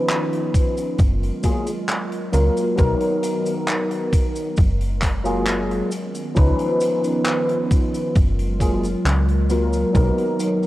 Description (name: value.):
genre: vaporwave.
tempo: 67 BPM.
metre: 4/4.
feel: straight.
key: F# major.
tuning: A4 = 444 Hz.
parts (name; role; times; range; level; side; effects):
overdriven tine electric piano; accompaniment; 0.0-10.7 s; E#3 to B4; -22 LUFS; equal; ensemble chorus, analog delay.
warbly tape-like pad; sustained chords; 0.0-10.7 s; D#3 to A#4; -27 LUFS; equal; chorus, built-in reverb, vintage 12-bit sampler grit.
big rock drum kit; drums; 0.1-10.7 s; cabasa, handclaps, hi-hat; -29 LUFS; equal; none.
electronic kick drum; drums; 0.5-10.1 s; none; -18 LUFS; equal; none.
slap-like FM bass; bass; 1.0-10.1 s; F#1 to C#2; -20 LUFS; equal; none.
room: light reverb, studio reverb.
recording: worn, warbling old tape, cassette tape, warbly pitch drift.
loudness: -18 LUFS.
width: side -16 dB against mid.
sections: 0.0-10.7 A section.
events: none.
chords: 0.0 C#9; 1.0 F#maj9; 2.8 Bmaj7; 4.6 F#maj9; 5.9 C#9; 8.2 F#maj9; 9.9 Bmaj7.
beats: 0.10 0.99 1.89 | 2.79 3.68 4.58 5.47 | 6.37 7.26 8.16 9.05 | 9.95.